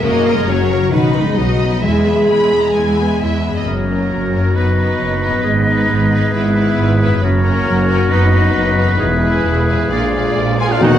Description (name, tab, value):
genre	cinematic, heroic adventure film score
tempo	134 BPM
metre	4/4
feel	straight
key	F# mixolydian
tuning	A4 = 439 Hz
part	warm symphonic violin section	melody	0.0-11.0 s	A#4 to B5	-25 LUFS	left 2 dB	none
part	clear symphonic violin section	second line	0.0-11.0 s	C#4 to B5	-28 LUFS	left 3 dB	none
part	rich symphonic viola section	accompaniment	0.0-11.0 s	Eb3 to A#4	-24 LUFS	equal	none
part	mellow French horn section	sustained chords	0.0-11.0 s	G#3 to A#4	-20 LUFS	left 1 dB	none
part	concert harp	arpeggios	0.0-11.0 s	E2 to D5	-22 LUFS	left 5 dB	none
part	clear symphonic double bass section	bass	0.0-10.9 s	E1 to E2	-21 LUFS	right 2 dB	none
part	rich symphonic cello section	bass	0.0-10.8 s	E2 to A#3	-18 LUFS	right 2 dB	none
part	timpani	percussion	0.0-0.7, 3.7-4.3, 10.8-11.0 s	F#2 to Eb3	-26 LUFS	right 1 dB	none
part	bright silver concert flute	second line	3.6-10.6 s	C#5 to E#5	-23 LUFS	left 1 dB	none
part	bright clarinet	second line	3.7-11.0 s	D4 to G#4	-23 LUFS	left 3 dB	none
part	clear oboe	second line	3.7-11.0 s	A#4 to G#5	-23 LUFS	right 1 dB	none
part	cymbal swell and tam-tam	percussion	7.2-11.0 s	none	-22 LUFS	left 1 dB	none
part	dark trumpet section	stabs	10.6-11.0 s	E#4 to G#4	-21 LUFS	equal	none
part	dark trombone section	sustained chords	10.8-11.0 s	Eb3 to Bb3	-25 LUFS	left 1 dB	none
part	warm tuba	bass	10.8-10.9 s	Eb2	-20 LUFS	right 5 dB	none
room	wet scoring stage reverb, RT60 1.6 s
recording	none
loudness	-12 LUFS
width	side -10 dB against mid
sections	0.0-3.7 A section; 3.7-10.8 B section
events	band accent 10.8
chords	0.0 F#; 0.9 B; 1.8 E; 3.7 F#; 4.6 B/F#; 5.4 G#m; 6.3 E/G#; 7.2 F#; 8.1 B/F#; 9.0 E; 9.9 A#7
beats	| 0.03 0.48 0.93 1.38 | 1.83 2.29 2.75 3.20 | 3.66 4.11 4.55 5.00 | 5.44 5.89 6.33 6.78 | 7.22 7.67 8.11 8.55 | 9.00 9.45 9.90 10.36 | 10.82